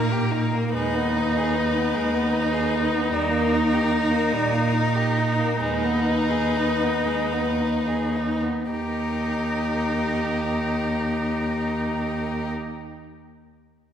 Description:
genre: classical, slow romantic movement for string quartet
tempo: 34-51 BPM (dotted quarters)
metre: 6/8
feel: rubato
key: Eb major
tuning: A4 = 440 Hz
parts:
  - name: clear violin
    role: melody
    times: 0.0-12.5 s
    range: Bb4 to Cb5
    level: -30 LUFS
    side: left 7 dB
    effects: none
  - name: clear violin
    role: second line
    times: 0.0-12.5 s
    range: G3 to Ab4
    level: -30 LUFS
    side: left 2 dB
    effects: none
  - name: clear viola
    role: accompaniment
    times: 0.0-12.5 s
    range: Bb3 to Eb4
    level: -26 LUFS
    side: right 1 dB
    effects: none
  - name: rich cello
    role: bass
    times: 0.0-12.5 s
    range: Eb2 to Bb2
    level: -25 LUFS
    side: right 1 dB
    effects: none
room: wet concert hall reverb, RT60 2.0 s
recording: heard from further back in the room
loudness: -21 LUFS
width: side -9 dB against mid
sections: 0.0-8.7 A section; 8.7-11.9 B section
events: slowing down 1.9-8.7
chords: 0.0 Eb; 0.7 Abm/Eb; 3.1 Eb; 5.6 Abm/Eb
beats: | 0.73 1.95 | 3.13 4.33 | 5.60 7.05 | 8.71 10.30

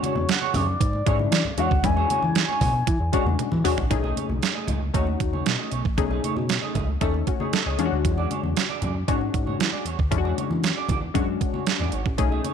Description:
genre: early-eighties boogie funk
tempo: 116 BPM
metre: 4/4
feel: straight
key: unclear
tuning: A4 = 440 Hz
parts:
  - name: expressive portamento lead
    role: melody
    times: 0.0-3.7 s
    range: C#5 to G#5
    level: -27 LUFS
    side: left 2 dB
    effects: chorus, slapback echo
  - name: funky polysynth comp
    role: accompaniment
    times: 0.0-12.5 s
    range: G#3 to C#5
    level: -28 LUFS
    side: left 12 dB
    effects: chorus
  - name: clean electric guitar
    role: riff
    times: 0.0-12.5 s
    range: A3 to D#5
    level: -32 LUFS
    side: right 11 dB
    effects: lush chorus
  - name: detuned 8-bit digital drum machine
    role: drums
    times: 0.0-12.5 s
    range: hi-hat, kick drum, snare drum, toms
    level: -25 LUFS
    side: right 4 dB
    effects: overdrive
  - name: congas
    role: percussion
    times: 0.0-12.5 s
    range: none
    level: -32 LUFS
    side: equal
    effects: none
  - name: chorused synth bass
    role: bass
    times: 0.2-12.4 s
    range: G#1 to E3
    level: -26 LUFS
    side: equal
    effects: none
room: light reverb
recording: 1960s-style stereo with parts hard left and right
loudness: -21 LUFS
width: side -7 dB against mid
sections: 0.0-3.9 A section; 3.9-12.5 B section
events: drum fill 3.4-3.9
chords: 0.0 E13; 3.9 B13; 7.8 E13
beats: 0.29 0.81 1.32 | 1.84 2.36 2.87 3.39 | 3.91 4.43 4.94 5.46 | 5.98 6.50 7.01 7.53 | 8.05 8.56 9.08 9.60 | 10.12 10.63 11.15 11.67 | 12.18

